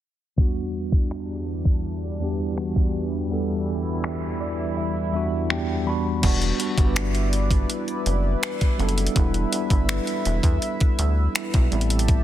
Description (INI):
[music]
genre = contemporary R&B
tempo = 82 BPM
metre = 4/4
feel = straight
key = E minor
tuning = A4 = 439 Hz
[part]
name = mellow tine electric piano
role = accompaniment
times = 0.4-12.2 s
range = E2 to B5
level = -26 LUFS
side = equal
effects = medium stereo tremolo
[part]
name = chorused pulse-width pad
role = sustained chords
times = 0.4-12.2 s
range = E2 to A5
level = -30 LUFS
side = equal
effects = none
[part]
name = clean 12-bit digital drum machine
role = drums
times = 0.4-12.2 s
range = crash cymbal, finger snaps, hi-hat, kick drum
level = -22 LUFS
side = equal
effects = soft clipping on snare
[part]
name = rubbery square bass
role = bass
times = 6.2-12.2 s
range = E1 to E2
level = -23 LUFS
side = equal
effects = none
[sound]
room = digital ambience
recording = dense, heavily limited modern master, low-pass filter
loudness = -21 LUFS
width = side -12 dB against mid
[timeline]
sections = 0.4-6.2 A section; 6.2-12.2 B section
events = filter sweep 0.4-6.2; kick muted 3.3-6.2; tine electric piano fill 4.0-6.2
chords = 0.4 Em7; 11.7 Am7